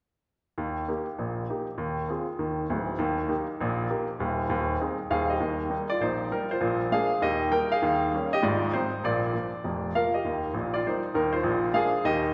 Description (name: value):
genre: jazz, stride piano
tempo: 199 BPM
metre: 4/4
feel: swing 63% on 8ths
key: Eb major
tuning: A4 = 439 Hz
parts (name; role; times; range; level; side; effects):
- clear baby grand piano; solo; 0.6-12.3 s; D1 to G5; -28 LUFS; equal; none
room: wet concert hall reverb, RT60 2.1 s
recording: recorded in a church or concert hall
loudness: -28 LUFS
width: mono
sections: 0.6-5.4 A section; 5.4-12.3 B section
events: none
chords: 0.6 Eb; 1.8 Fm7/Eb; 3.0 Eb; 4.2 Ab/Eb; 5.4 Eb; 6.6 Bb9; 7.2 Eb; 7.8 Eb7; 8.4 Abmaj7; 9.0 Bb; 10.2 Eb; 11.4 Bb9